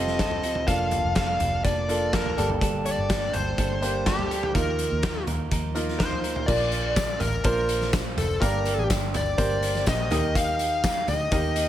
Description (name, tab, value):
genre	piano-driven pop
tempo	124 BPM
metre	4/4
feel	straight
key	Bb major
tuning	A4 = 440 Hz
part	bluesy overdriven lead guitar	melody	0.0-11.7 s	G4 to F5	-27 LUFS	left 2 dB	distortion
part	clear grand piano	accompaniment	0.0-11.7 s	G2 to Eb5	-29 LUFS	right 2 dB	none
part	clean electric guitar	riff	0.0-6.5 s	G2 to Bb4	-33 LUFS	right 6 dB	none
part	vintage muted fingered electric bass	bass	0.0-11.7 s	F1 to Eb2	-30 LUFS	equal	none
part	loose indie drum kit	drums	0.1-11.7 s	crash cymbal, handclaps, hi-hat, kick drum, snare drum, toms	-27 LUFS	equal	none
part	tambourine	percussion	6.5-11.7 s	none	-44 LUFS	left 8 dB	none
room	light reverb, small room ambience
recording	none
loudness	-22 LUFS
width	side -12 dB against mid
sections	0.0-6.5 A section; 6.5-11.7 B section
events	none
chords	0.0 Fadd9; 0.7 Bbmaj7/F; 2.4 Gmadd9; 4.5 Ebsus2; 6.5 Bb; 8.4 Gm; 10.1 Eb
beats	0.19 | 0.68 1.16 1.64 2.13 | 2.61 3.10 3.58 4.06 | 4.55 5.03 5.51 6.00 | 6.48 6.97 7.45 7.93 | 8.42 8.90 9.38 9.87 | 10.35 10.84 11.32